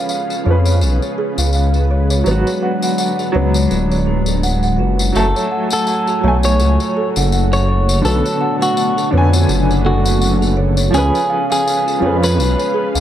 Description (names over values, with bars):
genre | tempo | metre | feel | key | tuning
trip hop | 83 BPM | 4/4 | swing 56% on 16ths | F# harmonic minor | A4 = 440 Hz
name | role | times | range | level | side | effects
warm upright piano | accompaniment | 0.0-13.0 s | D3 to G#5 | -22 LUFS | right 1 dB | tremolo, tape echo
string machine, cellos | sustained chords | 0.0-13.0 s | F#3 to G#5 | -21 LUFS | left 1 dB | ensemble chorus
music box | arpeggios | 0.0-13.0 s | C#4 to F#5 | -23 LUFS | right 3 dB | ping-pong delay
tambourine | percussion | 0.1-13.0 s | none | -25 LUFS | left 4 dB | none
dark detuned saw bass | bass | 0.5-13.0 s | D1 to E#2 | -15 LUFS | equal | none
clean electric guitar | melody | 5.2-12.9 s | F#4 to C#5 | -19 LUFS | equal | tape echo
room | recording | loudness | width
light reverb, small room ambience | dark, warm production | -13 LUFS | side -11 dB against mid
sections
0.0-5.2 A section; 5.2-13.0 B section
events
none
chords
0.0 C#7; 2.3 G#m7b5; 5.2 F#madd9; 8.0 Bm7; 10.9 C#7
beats
0.10 0.82 1.54 | 2.26 2.99 3.71 4.43 | 5.16 5.88 6.60 7.32 | 8.05 8.77 9.49 10.22 | 10.94 11.66 12.38